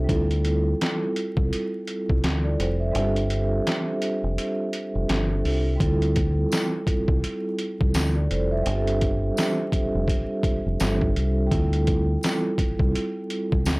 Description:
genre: hip hop, boom-bap hip-hop.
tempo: 84 BPM.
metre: 4/4.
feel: swing 59% on 16ths.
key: D minor.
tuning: A4 = 438 Hz.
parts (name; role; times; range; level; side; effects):
vibraphone with soft mallets; accompaniment; 0.0-13.8 s; G3 to E5; -26 LUFS; right 1 dB; cassette tape, high-pass filter, low-pass filter.
deep dub fingered electric bass; bass; 0.0-13.8 s; F1 to D2; -24 LUFS; equal; none.
trip hop sampler-style drum kit; drums; 0.1-13.8 s; handclaps, hi-hat, kick drum, snare drum; -26 LUFS; equal; overdrive.
tambourine; percussion; 6.5-13.8 s; none; -38 LUFS; left 2 dB; none.
room: little or no reverb.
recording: dry, gritty hardware recording, transformer saturation, vinyl crackle.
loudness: -21 LUFS.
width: side -25 dB against mid.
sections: 0.0-5.8 A section; 5.8-13.8 B section.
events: kick muted 2.9-5.8.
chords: 0.1 Dm11.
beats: | 0.09 0.80 1.51 2.23 | 2.94 3.66 4.37 5.09 | 5.80 6.51 7.23 7.94 | 8.66 9.37 10.09 10.80 | 11.52 12.23 12.94 13.66.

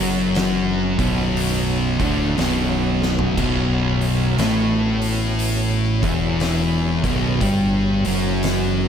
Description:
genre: stoner and doom metal.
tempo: 59 BPM.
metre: 4/4.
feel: swing 63% on 8ths.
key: B minor.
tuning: A4 = 440 Hz.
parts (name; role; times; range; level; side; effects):
tonewheel organ; sustained chords; 0.0-8.9 s; B3 to C#5; -33 LUFS; right 1 dB; slow rotary speaker, overdrive, chorus vibrato.
fuzz guitar; riff; 0.0-8.9 s; B1 to A3; -26 LUFS; equal; distortion.
thick fuzz guitar; riff; 0.0-8.9 s; B1 to A3; -22 LUFS; left 7 dB; distortion.
thick fuzz guitar; riff; 0.0-8.9 s; B1 to A3; -23 LUFS; right 6 dB; distortion.
growling picked electric bass; bass; 0.0-8.9 s; B0 to A1; -25 LUFS; right 1 dB; overdrive.
oversized low-tuned drum kit; drums; 0.4-8.7 s; crash cymbal, hi-hat, kick drum, snare drum, toms; -26 LUFS; right 1 dB; none.
room: light reverb, studio reverb.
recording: none.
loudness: -17 LUFS.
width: side -8 dB against mid.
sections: 0.0-8.9 A section.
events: drum fill 2.9-3.4.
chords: 0.0 Bm.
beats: 0.36 1.36 2.37 | 3.38 4.39 5.40 6.41 | 7.42 8.43.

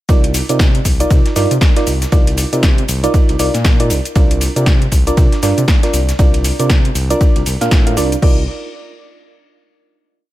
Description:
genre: deep house.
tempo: 118 BPM.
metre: 4/4.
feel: swing 59% on 16ths.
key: C minor.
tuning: A4 = 440 Hz.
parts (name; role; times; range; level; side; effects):
mellow FM electric piano; stabs; 0.1-8.4 s; D4 to F5; -18 LUFS; right 2 dB; chorus, sidechain pumping, tape echo.
smooth synth bass; bass; 0.1-8.5 s; C2 to C3; -18 LUFS; equal; sidechain pumping.
breakbeat sampler-style drum kit; drums; 0.1-8.1 s; ride cymbal, snare drum; -29 LUFS; right 3 dB; high-pass filter on cymbals, high-pass filter on snare.
deep house drum kit; drums; 0.1-8.3 s; crash cymbal, hi-hat, shaker, snare drum; -21 LUFS; left 1 dB; overdrive.
electronic kick drum; drums; 0.1-8.3 s; none; -12 LUFS; equal; none.
room: little or no reverb.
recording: none.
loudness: -11 LUFS.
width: side -15 dB against mid.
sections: 0.1-8.2 drop; 8.2-10.3 final chord.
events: drop 0.1-8.2.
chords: 0.1 Cm11; 4.2 Bb/C; 8.2 Cm11.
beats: | 0.09 0.60 1.11 1.61 | 2.12 2.63 3.14 3.65 | 4.16 4.67 5.17 5.68 | 6.19 6.70 7.21 7.72 | 8.22.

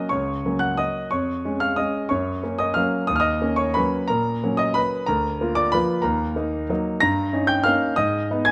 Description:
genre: classical, piano waltz.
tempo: 183 BPM.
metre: 3/4.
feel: uneven beats, rubato.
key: unclear.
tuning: A4 = 438 Hz.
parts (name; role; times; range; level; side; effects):
warm concert grand piano; solo; 0.0-8.5 s; C#2 to A#6; -22 LUFS; equal; none.
room: light reverb.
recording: close, detailed microphones.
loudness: -22 LUFS.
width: mono.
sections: 0.0-8.5 A section.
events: none.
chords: 0.0 F#; 1.1 C#/E#; 2.1 F#; 3.1 D#m7; 5.1 A#/D; 6.1 D#m; 7.0 D#7/G; 8.0 G#m.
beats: | 0.12 0.44 0.79 | 1.12 1.45 1.78 | 2.11 2.44 2.77 | 3.11 3.44 3.78 | 4.11 4.44 4.77 | 5.09 5.41 5.74 | 6.05 6.37 6.70 | 7.02 7.34 7.66 | 7.98 8.30.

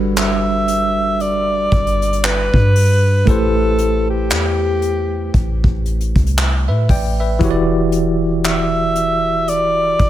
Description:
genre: contemporary R&B.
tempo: 58 BPM.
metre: 4/4.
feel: swing 58% on 16ths.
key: unclear.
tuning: A4 = 442 Hz.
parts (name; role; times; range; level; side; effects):
barky tine electric piano; accompaniment; 0.0-10.1 s; E3 to G5; -20 LUFS; right 1 dB; fast stereo tremolo.
clean 808-style bass; bass; 0.0-10.1 s; E1 to A2; -18 LUFS; equal; none.
breathy alto saxophone; melody; 0.2-10.1 s; G4 to E5; -18 LUFS; equal; none.
soft brush drum kit; drums; 0.2-10.1 s; handclaps, hi-hat, kick drum; -19 LUFS; equal; none.
room: small room reverb.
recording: none.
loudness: -14 LUFS.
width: side -12 dB against mid.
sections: 0.0-10.1 A section.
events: none.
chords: 0.0 Gmaj7; 3.3 Am7; 7.4 Em7.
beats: 0.17 1.20 2.24 | 3.27 4.30 5.34 6.37 | 7.41 8.44 9.48.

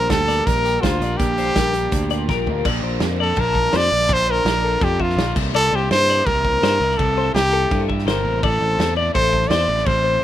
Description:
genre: math rock and midwest emo.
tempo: 166 BPM.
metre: 4/4.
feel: straight.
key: Bb lydian.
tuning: A4 = 444 Hz.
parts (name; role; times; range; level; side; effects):
clear trumpet; melody; 0.0-10.2 s; F4 to D5; -19 LUFS; equal; none.
twelve-string electric guitar; accompaniment; 0.0-4.1 s; Bb2 to G4; -30 LUFS; right 8 dB; wide subtle chorus.
twelve-string electric guitar; arpeggios; 0.0-10.2 s; G4 to A5; -26 LUFS; left 10 dB; tremolo, analog delay.
overdriven electric guitar; riff; 0.0-10.2 s; A2 to G4; -29 LUFS; right 1 dB; none.
modern bright picked electric bass; bass; 0.0-10.2 s; G1 to G2; -23 LUFS; equal; none.
loose indie drum kit; drums; 0.1-10.0 s; crash cymbal, hi-hat, kick drum, snare drum, toms; -24 LUFS; equal; none.
room: little or no reverb.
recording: rough home demo mix.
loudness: -16 LUFS.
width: side -12 dB against mid.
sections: 0.0-2.6 A section; 2.6-10.2 B section.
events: drum fill 2.3-2.6.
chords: 0.0 Gm7/Bb; 2.6 Bbmaj7; 5.4 C5; 8.4 Am.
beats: 0.10 0.46 0.83 | 1.19 1.55 1.92 2.28 | 2.64 3.01 3.37 3.73 | 4.09 4.46 4.82 5.18 | 5.54 5.90 6.26 6.62 | 6.99 7.35 7.71 8.07 | 8.43 8.79 9.15 9.51 | 9.87 10.23.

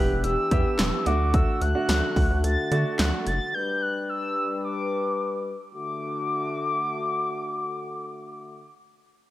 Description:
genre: synth-pop.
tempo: 109 BPM.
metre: 4/4.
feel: straight.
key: D major.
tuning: A4 = 440 Hz.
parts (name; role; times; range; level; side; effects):
mellow horn-like synth lead; melody; 0.0-8.7 s; D6 to A6; -29 LUFS; left 1 dB; chorus, analog delay.
clear concert grand piano; accompaniment; 0.0-3.2 s; A3 to G4; -30 LUFS; right 4 dB; none.
mellow brass ensemble; sustained chords; 0.0-8.7 s; D3 to B4; -30 LUFS; left 2 dB; none.
rubbery square bass; bass; 0.0-3.4 s; E1 to D3; -25 LUFS; equal; none.
punchy analog drum machine; drums; 0.2-3.4 s; handclaps, hi-hat, kick drum, snare drum; -25 LUFS; equal; gated reverb.
room: light reverb.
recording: none.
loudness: -23 LUFS.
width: side -15 dB against mid.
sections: 0.0-5.7 A section; 5.7-7.9 B section.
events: none.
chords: 0.0 Em7; 1.1 D; 3.5 G; 5.7 D.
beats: 0.24 0.79 | 1.34 1.89 2.44 2.99 | 3.54 4.09 4.64 5.19 | 5.74 6.29 6.84 7.39.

